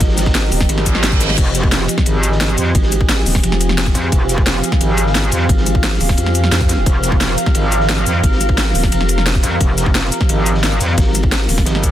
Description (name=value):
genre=dark technical drum and bass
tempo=175 BPM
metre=4/4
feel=straight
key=F minor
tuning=A4 = 436 Hz
part: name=sweeping resonant pad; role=sustained chords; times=0.0-11.9 s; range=F3 to Bb4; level=-21 LUFS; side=right 2 dB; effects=chorus, sidechain pumping
part: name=vowel-sweep wobble bass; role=bass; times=0.0-0.7, 2.7-11.7 s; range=Eb1 to F2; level=-17 LUFS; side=equal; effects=chorus
part: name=crunchy breakbeat drum kit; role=drums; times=0.0-11.9 s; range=ride cymbal, snare drum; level=-28 LUFS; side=equal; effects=high-pass filter on cymbals, high-pass filter on snare, high-pass filter on room
part: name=drum and bass drum kit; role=drums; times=0.0-11.9 s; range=cabasa, crash cymbal, hi-hat, snare drum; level=-19 LUFS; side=equal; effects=none
part: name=electronic kick drum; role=drums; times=0.0-11.9 s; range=none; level=-16 LUFS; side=equal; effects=none
part: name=warbly tape-like pad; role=texture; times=0.0-11.9 s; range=Eb5 to F5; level=-25 LUFS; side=equal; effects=chorus, built-in reverb, sidechain pumping
part: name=metallic wobble bass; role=bass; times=0.7-11.9 s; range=F1 to F2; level=-17 LUFS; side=equal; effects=chorus, overdrive, sidechain pumping
part: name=reverse cymbal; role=sound effects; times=0.8-1.4 s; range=none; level=-24 LUFS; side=right 5 dB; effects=none
room=little or no reverb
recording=dense, heavily limited modern master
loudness=-12 LUFS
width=side -12 dB against mid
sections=0.0-11.9 A section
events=reverse cymbal 0.8-1.4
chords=0.0 Fmadd9